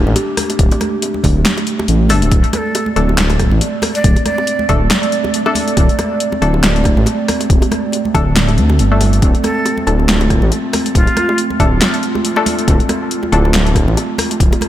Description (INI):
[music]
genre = deep dubstep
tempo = 139 BPM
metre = 4/4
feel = swing 57% on 16ths, half-time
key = D minor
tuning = A4 = 440 Hz
[part]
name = dark analog pad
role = sustained chords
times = 0.0-14.7 s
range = A3 to D5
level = -20 LUFS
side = right 2 dB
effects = chorus
[part]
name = dark detuned saw bass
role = bass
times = 0.0-14.5 s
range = D1 to D2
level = -14 LUFS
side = equal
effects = none
[part]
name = congas and bongos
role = percussion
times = 0.1-14.7 s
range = none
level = -22 LUFS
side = right 1 dB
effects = dub echo
[part]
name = deep house drum kit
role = drums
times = 0.2-14.7 s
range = handclaps, hi-hat, rim click, snare drum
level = -19 LUFS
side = left 1 dB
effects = overdrive
[part]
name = electronic kick drum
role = drums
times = 0.6-14.5 s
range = none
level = -14 LUFS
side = equal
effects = overdrive
[part]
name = filtered dub chord stab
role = stabs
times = 2.1-13.4 s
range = A3 to A4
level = -22 LUFS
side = left 4 dB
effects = chorus, cassette tape, dub echo
[part]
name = breathy bright shakuhachi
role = melody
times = 2.5-4.7, 9.4-11.4 s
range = F4 to D5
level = -23 LUFS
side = right 1 dB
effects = dub echo
[sound]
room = light reverb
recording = none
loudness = -12 LUFS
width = side -12 dB against mid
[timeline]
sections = 0.0-14.7 A section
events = none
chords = 0.0 D5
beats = 0.16 | 0.59 1.02 1.45 1.88 | 2.32 2.75 3.18 3.61 | 4.04 4.47 4.91 5.34 | 5.77 6.20 6.63 7.06 | 7.50 7.93 8.36 8.79 | 9.22 9.65 10.09 10.52 | 10.95 11.38 11.81 12.24 | 12.68 13.11 13.54 13.97 | 14.40